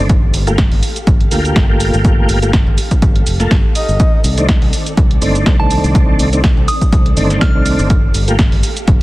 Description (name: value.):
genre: deep house.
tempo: 123 BPM.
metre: 4/4.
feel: swing 55% on 16ths.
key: C dorian.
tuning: A4 = 440 Hz.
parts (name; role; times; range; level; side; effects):
soft string machine; sustained chords; 0.0-9.0 s; Eb3 to F5; -27 LUFS; equal; ensemble chorus, sidechain pumping.
tonewheel organ; stabs; 0.0-8.4 s; Eb3 to A4; -18 LUFS; equal; chorus vibrato, fast rotary speaker, sidechain pumping, analog delay.
modern bright fingered electric bass; bass; 0.0-9.0 s; F1 to D2; -16 LUFS; equal; sidechain pumping.
electronic kick drum; drums; 0.1-9.0 s; none; -12 LUFS; equal; none.
punchy analog drum machine; drums; 0.1-9.0 s; hi-hat, shaker, snare drum; -20 LUFS; right 1 dB; none.
breathy flute-like synth lead; melody; 3.8-4.2 s; Eb5; -23 LUFS; left 1 dB; chorus, analog delay.
soft synth bell; melody; 5.6-7.8 s; A5 to F6; -23 LUFS; right 2 dB; chorus, tape echo.
room: little or no reverb.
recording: dense, heavily limited modern master.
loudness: -10 LUFS.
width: side -18 dB against mid.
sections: 0.0-9.0 A section.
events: none.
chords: 0.1 Gm9; 4.0 Cm69; 7.9 Gm9.